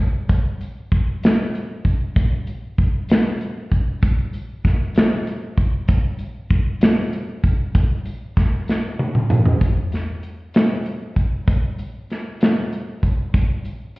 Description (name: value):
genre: gospel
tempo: 64 BPM (dotted quarters)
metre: 6/8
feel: straight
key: none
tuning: none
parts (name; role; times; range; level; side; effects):
- tambourine; percussion; 0.0-13.9 s; none; -52 LUFS; left 1 dB; none
- modern studio drum kit; drums; 0.3-14.0 s; hi-hat, kick drum, snare drum, toms; -17 LUFS; equal; none
room: moderate echo chamber reverb, RT60 1.7 s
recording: heard muffled through a wall, stone room reverb, EQ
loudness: -18 LUFS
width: side -22 dB against mid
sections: 0.0-9.6 A section; 9.6-14.0 B section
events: drum fill 8.7-9.6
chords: none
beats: | 0.30 1.23 | 2.16 3.09 | 4.03 4.96 | 5.89 6.82 | 7.75 8.68 | 9.61 10.54 | 11.47 12.40 | 13.33